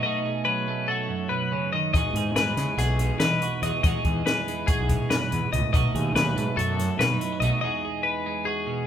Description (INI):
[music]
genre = math rock and midwest emo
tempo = 285 BPM (eighths)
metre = 9/8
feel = straight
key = E major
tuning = A4 = 440 Hz
[part]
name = twelve-string electric guitar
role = accompaniment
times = 0.0-8.9 s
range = E2 to G#4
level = -28 LUFS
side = right 5 dB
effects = none
[part]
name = twelve-string electric guitar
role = arpeggios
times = 0.0-8.9 s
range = G#4 to D#5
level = -27 LUFS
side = left 5 dB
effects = none
[part]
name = fuzz fingered electric bass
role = bass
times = 1.9-7.5 s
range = B1 to E3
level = -27 LUFS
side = equal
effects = overdrive
[part]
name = compact cocktail drum kit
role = drums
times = 1.9-7.5 s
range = hi-hat, kick drum, snare drum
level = -26 LUFS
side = equal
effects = none
[sound]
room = moderate large studio reverb, RT60 1.2 s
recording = band playing live in one room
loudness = -22 LUFS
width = side -9 dB against mid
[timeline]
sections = 0.0-8.9 A section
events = break 7.6-8.9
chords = 0.0 B9; 1.9 Emaj9; 5.7 B7; 7.6 Emaj9